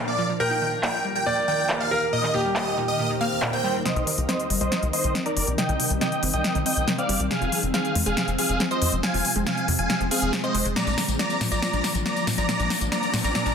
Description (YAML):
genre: uplifting trance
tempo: 139 BPM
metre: 4/4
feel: straight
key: C minor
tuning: A4 = 440 Hz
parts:
  - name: clear grand piano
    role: second line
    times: 0.0-3.8 s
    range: G4 to D5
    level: -27 LUFS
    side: right 1 dB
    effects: tape echo
  - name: shimmering ambient pad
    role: sustained chords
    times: 0.0-13.5 s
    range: Eb2 to F5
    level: -31 LUFS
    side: left 1 dB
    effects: chorus, built-in reverb
  - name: big supersaw lead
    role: melody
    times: 0.1-13.5 s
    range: Ab4 to Bb5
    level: -26 LUFS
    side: right 1 dB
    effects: low-pass filter
  - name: analog pluck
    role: arpeggios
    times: 0.1-13.5 s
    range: Bb2 to F4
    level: -31 LUFS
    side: right 1 dB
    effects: chorus, ping-pong delay
  - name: big-room dance drum kit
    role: drums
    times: 0.8-13.5 s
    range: handclaps, hi-hat, snare drum, tambourine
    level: -26 LUFS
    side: left 1 dB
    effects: overdrive, low-pass filter on snare, low-pass filter on hats, low-pass filter on perc
  - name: swell and riser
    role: sound effects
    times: 3.2-3.9, 12.2-13.5 s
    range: none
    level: -35 LUFS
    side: right 2 dB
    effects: none
  - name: tight sequencer bass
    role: bass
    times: 4.0-13.5 s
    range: F1 to Bb2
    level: -27 LUFS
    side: equal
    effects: none
room: moderate digital room reverb, RT60 1.1 s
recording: dense, heavily limited modern master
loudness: -21 LUFS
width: side -6 dB against mid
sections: 0.0-3.9 A section; 3.9-13.5 B section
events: swell 3.2-3.9; build-up 3.9-13.5; drum fill 3.9-13.5; filter sweep on supersaw synth 3.9-13.5; filter sweep on synth pluck 3.9-13.5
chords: 0.4 Eb; 3.9 Cm; 7.3 Fm; 10.8 Bb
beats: | 0.40 0.83 1.26 1.70 | 2.13 2.56 2.99 3.42 | 3.85 4.29 4.72 5.15 | 5.58 6.01 6.45 6.88 | 7.31 7.74 8.17 8.60 | 9.04 9.47 9.90 10.33 | 10.76 11.19 11.62 12.06 | 12.49 12.92 13.35